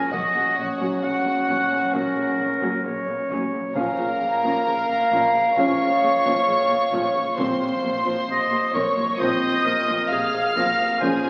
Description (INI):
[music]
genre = cinematic, suspense film score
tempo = 66 BPM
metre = 4/4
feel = straight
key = unclear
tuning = A4 = 440 Hz
[part]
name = warm symphonic violin section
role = melody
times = 0.0-11.3 s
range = Gb5 to F6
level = -30 LUFS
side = equal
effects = none
[part]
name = warm clarinet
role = second line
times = 0.0-11.3 s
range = Ab4 to Gb5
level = -26 LUFS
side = equal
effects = none
[part]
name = warm symphonic violin section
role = second line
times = 0.0-11.3 s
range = Gb4 to F5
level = -28 LUFS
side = equal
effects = none
[part]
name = dark French horn section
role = sustained chords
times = 0.0-11.3 s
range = F3 to Db4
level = -30 LUFS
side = equal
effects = none
[part]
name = warm sub bass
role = drone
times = 0.0-11.3 s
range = Bb1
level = -57 LUFS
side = equal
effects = none
[part]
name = dark symphonic viola section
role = accompaniment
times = 0.1-11.3 s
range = C3 to Db4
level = -32 LUFS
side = equal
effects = none
[part]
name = dark symphonic double bass section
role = bass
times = 0.1-11.1 s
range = Bb1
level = -45 LUFS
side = equal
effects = none
[part]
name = warm symphonic cello section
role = bass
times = 0.1-11.3 s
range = Bb2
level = -36 LUFS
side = equal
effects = none
[part]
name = taiko ensemble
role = drums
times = 0.1-11.3 s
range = none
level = -46 LUFS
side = equal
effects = none
[part]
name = timpani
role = percussion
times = 0.1-1.4 s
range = Bb2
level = -45 LUFS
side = equal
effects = none
[part]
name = felt-muted upright piano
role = texture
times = 5.6-11.3 s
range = Bb3 to F5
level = -38 LUFS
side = equal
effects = none
[sound]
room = wet concert hall reverb, RT60 2.4 s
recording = very old 78 rpm record, vinyl crackle, lossy compression artefacts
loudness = -22 LUFS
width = mono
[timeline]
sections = 0.0-11.3 A section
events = none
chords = 0.1 Gb/Bb; 3.7 Bbm; 7.4 Fsus4/Bb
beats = | 0.11 1.02 1.93 2.84 | 3.75 4.66 5.57 6.48 | 7.39 8.29 9.20 10.11 | 11.02